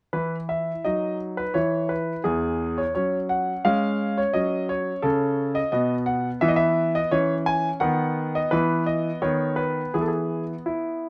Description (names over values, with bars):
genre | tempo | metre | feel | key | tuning
classical-period piano sonatina | 86 BPM | 2/4 | straight | E major | A4 = 440 Hz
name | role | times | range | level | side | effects
bright baby grand piano | solo | 0.1-11.1 s | E2 to G#5 | -24 LUFS | equal | none
room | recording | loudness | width
light reverb | close, detailed microphones | -24 LUFS | mono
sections
0.1-11.1 A section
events
none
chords
0.1 N.C.; 0.9 B/F#; 1.6 N.C.; 3.0 F#5; 3.7 C#/G#; 4.4 F#5; 5.7 N.C.; 6.4 E5; 7.1 E6; 7.8 B/D#; 8.5 E5; 9.2 B/D#; 9.9 E